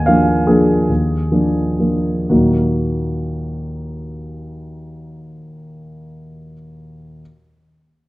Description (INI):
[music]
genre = classical, piano waltz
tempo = 113-160 BPM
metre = 3/4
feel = rubato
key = Eb minor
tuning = A4 = 443 Hz
[part]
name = warm concert grand piano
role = solo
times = 0.0-7.2 s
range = Eb2 to Ab5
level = -16 LUFS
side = equal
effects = none
[sound]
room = moderate recital hall reverb, RT60 1.9 s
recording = worn, warbling old tape, cassette tape, warbly pitch drift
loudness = -14 LUFS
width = side -19 dB against mid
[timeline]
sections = 0.0-2.3 A section; 2.3-5.1 B section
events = slowing down 0.0-2.3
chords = 0.0 Bb7/Eb; 2.3 Ebm